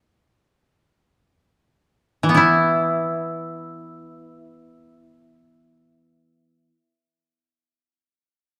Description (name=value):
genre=japanese traditional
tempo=free time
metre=none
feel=none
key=unclear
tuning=A4 = 440 Hz
part: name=koto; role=melody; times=0.0-6.7 s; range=E4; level=-22 LUFS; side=equal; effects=none
part: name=koto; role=accompaniment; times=2.2-6.8 s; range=E3 to E4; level=-22 LUFS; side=equal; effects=none
room=moderate recital hall reverb, RT60 1.4 s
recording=dark, warm production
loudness=-19 LUFS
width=mono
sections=0.0-2.4 A section; 2.4-8.3 B section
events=slowing down 0.0-2.4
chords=none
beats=free time